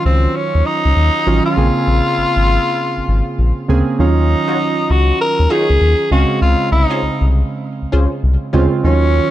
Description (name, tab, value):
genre	R&B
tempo	99 BPM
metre	4/4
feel	swing 63% on 16ths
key	Eb dorian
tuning	A4 = 440 Hz
part	warm analog keys	accompaniment	0.0-9.3 s	Db3 to F5	-19 LUFS	right 4 dB	chorus
part	raspy tenor saxophone	melody	0.1-9.3 s	C4 to Bb4	-17 LUFS	left 1 dB	none
part	round analog bass	bass	0.1-9.2 s	Ab1 to Eb2	-14 LUFS	left 1 dB	none
part	funky polysynth comp	stabs	4.5-8.7 s	Db4 to Db5	-24 LUFS	left 1 dB	chorus, ping-pong delay
room	digital ambience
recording	dark, warm production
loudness	-12 LUFS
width	side -13 dB against mid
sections	0.0-9.3 A section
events	none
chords	0.0 Ebm9; 1.6 Bbm9; 4.0 Ebm9; 6.1 Dbmaj7